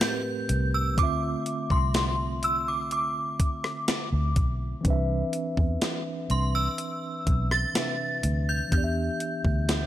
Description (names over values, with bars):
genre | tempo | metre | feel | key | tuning
contemporary R&B | 62 BPM | 4/4 | straight | unclear | A4 = 440 Hz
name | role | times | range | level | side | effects
synth chime | melody | 0.0-9.9 s | C6 to A6 | -30 LUFS | right 1 dB | ensemble chorus, phaser, ping-pong delay
mellow tine electric piano | accompaniment | 0.0-9.9 s | A2 to E5 | -32 LUFS | right 1 dB | medium stereo tremolo
gated 80s digital drum machine | drums | 0.0-9.9 s | hi-hat, kick drum, rim click, snare drum | -27 LUFS | equal | gated reverb, gated reverb snare
vintage muted fingered electric bass | bass | 0.5-9.9 s | B1 to E2 | -27 LUFS | equal | none
room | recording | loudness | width
little or no reverb | none | -24 LUFS | side -13 dB against mid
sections
0.0-9.9 A section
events
none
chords
0.0 Am7; 1.0 Dm9; 4.8 Cmaj7; 8.7 Em7